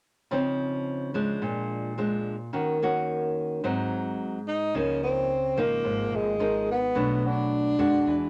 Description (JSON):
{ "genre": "bossa nova", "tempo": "108 BPM", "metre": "4/4", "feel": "straight", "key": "Db major", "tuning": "A4 = 441 Hz", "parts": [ { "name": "nylon-string guitar", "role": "accompaniment", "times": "0.3-8.3 s", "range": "Ab2 to Gb4", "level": "-29 LUFS", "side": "equal", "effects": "none" }, { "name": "breathy tenor saxophone", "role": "melody", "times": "4.5-8.3 s", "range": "Ab3 to Eb4", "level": "-29 LUFS", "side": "equal", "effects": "none" }, { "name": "upright bass", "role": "bass", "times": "4.7-8.3 s", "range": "Ab1 to Gb2", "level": "-38 LUFS", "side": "equal", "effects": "none" } ], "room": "moderate club reverb, RT60 0.6 s", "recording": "none", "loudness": "-27 LUFS", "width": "mono", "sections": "0.3-4.7 A section; 4.7-8.3 B section", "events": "none", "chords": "0.3 Dbmaj9; 1.4 Bb7; 2.5 Ebm7; 3.6 Ab7; 4.7 Db69; 7.0 Cbm7" }